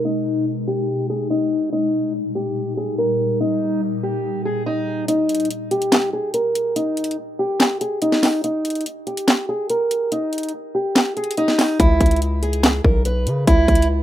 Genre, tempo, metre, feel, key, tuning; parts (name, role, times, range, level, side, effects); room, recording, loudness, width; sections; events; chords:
hip hop, trap; 143 BPM; 4/4; half-time; A4 = 442 Hz
fingerpicked steel-string acoustic guitar; melody; 0.0-13.9 s; D#4 to B4; -20 LUFS; equal; low-pass filter, tape echo
ethereal airy pad; sustained chords; 0.0-5.0 s; A#2 to D#4; -25 LUFS; left 2 dB; ensemble chorus, built-in reverb
trap drum kit; drums; 5.1-13.9 s; handclaps, hi-hat, kick drum, snare drum; -18 LUFS; equal
hard-hitting 808-style bass; bass; 11.8-14.0 s; B1 to C#3; -19 LUFS; equal
light reverb; rough home demo mix, low-pass filter; -17 LUFS; side -12 dB against mid
0.0-5.1 A section; 5.1-14.0 B section
filter sweep 0.0-5.1; kick muted 5.1-11.8; filter sweep on steel-string acoustic guitar 5.1-11.8
0.0 G#m; 1.7 D#; 5.1 N.C.; 11.8 C#m